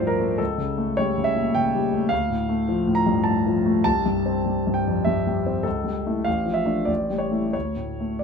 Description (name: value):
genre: classical, romantic character piece for solo piano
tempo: 87-107 BPM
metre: 3/4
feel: rubato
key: D minor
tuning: A4 = 440 Hz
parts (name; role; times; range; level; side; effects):
- clear concert grand piano; solo; 0.0-8.2 s; A1 to Bb5; -20 LUFS; left 1 dB; none
room: moderate small room reverb, RT60 0.6 s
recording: none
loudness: -20 LUFS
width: side -6 dB against mid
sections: 0.0-8.2 A section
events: none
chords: 0.4 A7/C#; 2.1 Dm; 3.8 C; 5.7 A7/C#; 6.3 Dm/A; 6.9 A7; 7.5 D5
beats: | 0.39 0.98 1.54 | 2.11 2.68 3.26 | 3.85 4.44 5.05 | 5.65 6.26 6.89 | 7.54 8.23